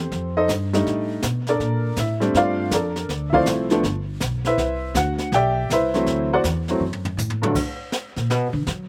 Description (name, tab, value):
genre	jazz piano trio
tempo	161 BPM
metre	4/4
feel	swing 64% on 8ths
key	unclear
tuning	A4 = 440 Hz
part	warm upright piano	melody	0.0-7.5 s	G2 to G5	-23 LUFS	equal	none
part	upright bass	bass	0.0-8.9 s	G1 to Gb3	-28 LUFS	equal	none
part	jazz brush drum kit	drums	0.1-8.9 s	brushed snare drum, crash cymbal, hi-hat, kick drum, snare drum, toms	-31 LUFS	equal	none
room	little or no reverb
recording	recorded outdoors, with no room sound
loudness	-22 LUFS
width	mono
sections	0.0-7.6 A section; 7.6-8.9 B section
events	drum fill 6.8-7.6; upright bass solo 7.6-8.9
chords	0.1 F13; 1.6 Bbmaj13; 3.1 Dm9; 3.8 G; 4.6 Cmaj9; 6.1 D9; 7.6 Bbaug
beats	| 0.11 0.48 0.85 1.23 | 1.60 1.97 2.35 2.72 | 3.09 3.46 3.83 4.21 | 4.58 4.95 5.32 5.70 | 6.07 6.44 6.81 7.19 | 7.56 7.93 8.30 8.68